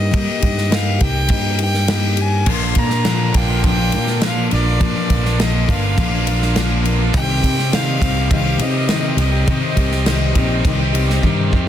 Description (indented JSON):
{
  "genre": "folk rock and heartland rock",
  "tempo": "103 BPM",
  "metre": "4/4",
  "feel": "straight",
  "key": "unclear",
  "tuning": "A4 = 444 Hz",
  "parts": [
    { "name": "clear fiddle", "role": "melody", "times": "0.0-11.2 s", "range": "D5 to C6", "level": "-24 LUFS", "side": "equal", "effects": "none" },
    { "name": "picked steel-string acoustic guitar", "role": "accompaniment", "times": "0.0-11.7 s", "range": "Bb2 to Bb4", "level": "-23 LUFS", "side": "left 8 dB", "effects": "none" },
    { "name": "mellow tonewheel organ", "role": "sustained chords", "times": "0.0-11.7 s", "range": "Bb3 to Eb5", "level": "-33 LUFS", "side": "right 2 dB", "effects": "none" },
    { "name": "picked electric bass", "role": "bass", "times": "0.0-11.7 s", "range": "G1 to G3", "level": "-19 LUFS", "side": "right 1 dB", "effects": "none" },
    { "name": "natural country drum kit", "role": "drums", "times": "0.1-11.7 s", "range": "crash cymbal, kick drum, ride cymbal, snare drum", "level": "-19 LUFS", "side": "equal", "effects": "none" },
    { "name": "overdriven electric guitar", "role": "riff", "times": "2.5-11.7 s", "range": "Bb2 to G4", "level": "-23 LUFS", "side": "right 4 dB", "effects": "none" }
  ],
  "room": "little or no reverb",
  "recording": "dense, heavily limited modern master",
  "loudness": "-14 LUFS",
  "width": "side -10 dB against mid",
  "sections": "0.0-11.7 A section",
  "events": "drum fill 11.2-11.7",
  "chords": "0.0 Eb/G; 2.5 Bb; 7.1 Cm",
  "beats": "| 0.14 0.73 1.31 1.90 | 2.48 3.06 3.64 4.23 | 4.81 5.39 5.97 6.55 | 7.14 7.72 8.30 8.88 | 9.47 10.05 10.64 11.22"
}